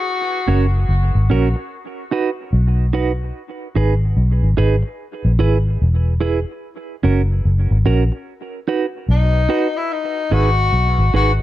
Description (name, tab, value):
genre	dub reggae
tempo	73 BPM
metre	4/4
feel	swing 63% on 16ths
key	G# minor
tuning	A4 = 440 Hz
part	warm tenor saxophone	melody	0.0-0.9, 9.1-11.3 s	D#4 to F#4	-22 LUFS	left 5 dB	dub echo
part	clean electric guitar	accompaniment	0.5-11.4 s	C#4 to B4	-22 LUFS	right 6 dB	tremolo, dub echo
part	vintage muted fingered electric bass	bass	0.5-11.4 s	E1 to B1	-15 LUFS	equal	none
room	light reverb, studio reverb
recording	none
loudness	-15 LUFS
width	side -14 dB against mid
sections	0.0-9.9 A section; 9.9-11.4 B section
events	none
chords	0.1 F#; 1.7 B; 3.3 G#m; 5.0 E; 6.6 F#; 8.3 B; 9.9 G#m